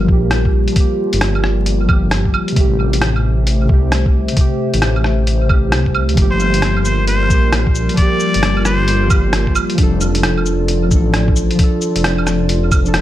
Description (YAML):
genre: future garage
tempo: 133 BPM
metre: 4/4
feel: swing 63% on 16ths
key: G dorian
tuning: A4 = 439 Hz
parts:
  - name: muted felt-like synth keys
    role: accompaniment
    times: 0.0-13.0 s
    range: C3 to A4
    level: -20 LUFS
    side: equal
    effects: chorus, sidechain pumping, tape echo
  - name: warbly tape-like pad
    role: sustained chords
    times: 0.0-13.0 s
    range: F3 to E5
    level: -22 LUFS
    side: left 2 dB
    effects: chorus, built-in reverb, sidechain pumping
  - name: dark detuned saw bass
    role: bass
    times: 0.0-13.0 s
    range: F1 to D2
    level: -17 LUFS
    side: equal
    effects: tube saturation, sidechain pumping
  - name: electronic kick drum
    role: drums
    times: 0.1-12.8 s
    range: none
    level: -14 LUFS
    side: equal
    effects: studio reverb
  - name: lo-fi sampler-style drum kit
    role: drums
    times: 0.3-13.0 s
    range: cabasa, claves, hi-hat, rim click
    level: -20 LUFS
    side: right 1 dB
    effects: studio reverb, analog delay
  - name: trumpet with straight mute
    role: melody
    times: 6.3-9.1 s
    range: C5 to D5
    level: -20 LUFS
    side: equal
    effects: analog delay
room: little or no reverb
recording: echo-heavy mix, vinyl crackle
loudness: -12 LUFS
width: side -13 dB against mid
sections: 0.0-13.0 A section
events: none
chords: 0.0 Gm7; 2.6 Am7; 6.2 Gm7; 9.8 F6